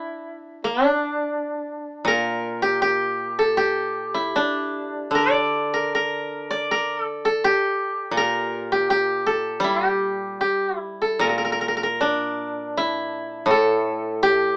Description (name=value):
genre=japanese traditional, Japanese chamber music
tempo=74-85 BPM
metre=2/4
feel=rubato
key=G kumoi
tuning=A4 = 440 Hz
part: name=koto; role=melody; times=0.0-14.6 s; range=D4 to D5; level=-21 LUFS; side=equal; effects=none
part: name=koto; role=accompaniment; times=2.0-14.6 s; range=A2 to G3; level=-26 LUFS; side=equal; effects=none
room=light reverb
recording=small speaker sound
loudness=-20 LUFS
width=side -29 dB against mid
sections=0.0-11.2 A section; 11.2-14.6 B section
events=none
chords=none